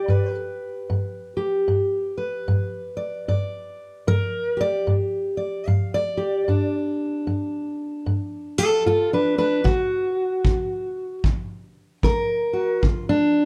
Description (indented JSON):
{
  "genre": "acoustic country blues, solo or duo",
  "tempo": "75 BPM",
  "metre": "4/4",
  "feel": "swing 61% on 8ths",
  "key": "G major",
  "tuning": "A4 = 440 Hz",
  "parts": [
    { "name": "fingerpicked steel-string acoustic guitar", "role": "melody", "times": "0.0-13.5 s", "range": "G2 to F5", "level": "-24 LUFS", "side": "equal", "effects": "none" },
    { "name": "kick drum", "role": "drums", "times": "9.7-13.1 s", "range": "none", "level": "-25 LUFS", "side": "equal", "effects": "none" }
  ],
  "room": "light reverb",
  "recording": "dark, warm production",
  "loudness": "-23 LUFS",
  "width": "mono",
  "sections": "0.0-13.5 A section",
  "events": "steel-string acoustic guitar solo 0.0-13.5",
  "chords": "0.0 G; 9.6 D",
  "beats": "| 0.09 0.89 1.69 2.48 | 3.28 4.08 4.87 5.67 | 6.47 7.26 8.06 8.85 | 9.65 10.44 11.24 12.03 | 12.83"
}